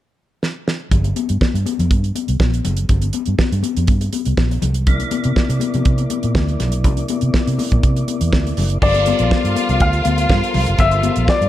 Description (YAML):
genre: disco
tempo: 122 BPM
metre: 4/4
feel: straight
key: G dorian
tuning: A4 = 440 Hz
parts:
  - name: damped 70s drum kit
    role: drums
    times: 0.4-11.5 s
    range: crash cymbal, hi-hat, kick drum, snare drum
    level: -18 LUFS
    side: right 1 dB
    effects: none
  - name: vintage muted fingered electric bass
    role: bass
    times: 0.9-11.5 s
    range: F#1 to C3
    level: -18 LUFS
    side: right 1 dB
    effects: none
  - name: congas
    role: percussion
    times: 0.9-11.5 s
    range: none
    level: -23 LUFS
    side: left 8 dB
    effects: none
  - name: percussive tonewheel organ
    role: sustained chords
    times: 4.9-11.5 s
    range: C3 to D5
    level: -26 LUFS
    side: right 1 dB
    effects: overdrive, chorus vibrato, fast rotary speaker
  - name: clear baby grand piano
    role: melody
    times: 8.8-11.5 s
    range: D5 to F5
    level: -19 LUFS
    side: left 4 dB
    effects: none
  - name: clear studio string section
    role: second line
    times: 8.8-11.5 s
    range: F4 to F5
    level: -22 LUFS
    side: left 1 dB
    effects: none
room: small room ambience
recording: dark, warm production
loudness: -15 LUFS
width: side -13 dB against mid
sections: 0.9-8.8 A section; 8.8-11.5 B section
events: drum fill 0.4-0.9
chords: 0.0 N.C.; 0.9 Gm; 4.6 C9; 8.8 Gm11